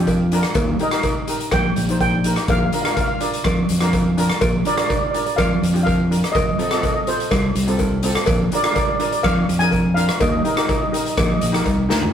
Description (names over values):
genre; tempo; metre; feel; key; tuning
calypso; 124 BPM; 4/4; straight; Eb major; A4 = 440 Hz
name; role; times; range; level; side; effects
steel pan; accompaniment; 0.0-12.1 s; C4 to C5; -25 LUFS; equal; none
fretless electric bass; bass; 0.0-12.1 s; F1 to F2; -19 LUFS; equal; none
street-band drum kit; drums; 0.1-12.1 s; hi-hat, kick drum, rim click, snare drum, toms; -22 LUFS; equal; none
cowbell; percussion; 0.1-11.8 s; none; -25 LUFS; equal; none
steel pan; melody; 0.8-11.5 s; C5 to Ab5; -23 LUFS; equal; none
room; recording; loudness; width
moderate stone room reverb, RT60 1.0 s; rough rehearsal-room recording; -16 LUFS; side -9 dB against mid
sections
0.0-12.1 A section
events
drum fill 11.9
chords
0.0 Bb6; 0.6 Eb; 2.5 Bb; 6.4 F; 8.3 Bb; 10.2 Eb